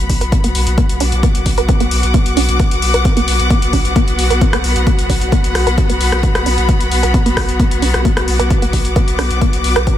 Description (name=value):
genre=driving peak-time techno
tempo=132 BPM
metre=4/4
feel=straight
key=B minor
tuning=A4 = 440 Hz
part: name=saturated sub bass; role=bass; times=0.0-9.9 s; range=B1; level=-17 LUFS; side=equal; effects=overdrive, sidechain pumping, low-pass filter
part: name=rich chamber string section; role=texture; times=0.0-10.0 s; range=B3 to D6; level=-19 LUFS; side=left 2 dB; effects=sidechain pumping
part: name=electronic kick drum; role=drums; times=0.1-10.0 s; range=none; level=-14 LUFS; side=equal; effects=none
part: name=punchy analog drum machine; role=drums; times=0.1-10.0 s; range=hi-hat, rim click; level=-22 LUFS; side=left 2 dB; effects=sidechain pumping on hats, sidechain pumping on cymbals
part: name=resonant blip pluck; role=riff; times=0.2-9.9 s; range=B3 to B4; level=-21 LUFS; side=right 1 dB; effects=phaser, tube saturation, sidechain pumping, dub echo
room=digital ambience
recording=none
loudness=-12 LUFS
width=side -11 dB against mid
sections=0.0-10.0 A section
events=filter sweep on synth arpeggio sound 0.0-10.0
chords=0.0 B5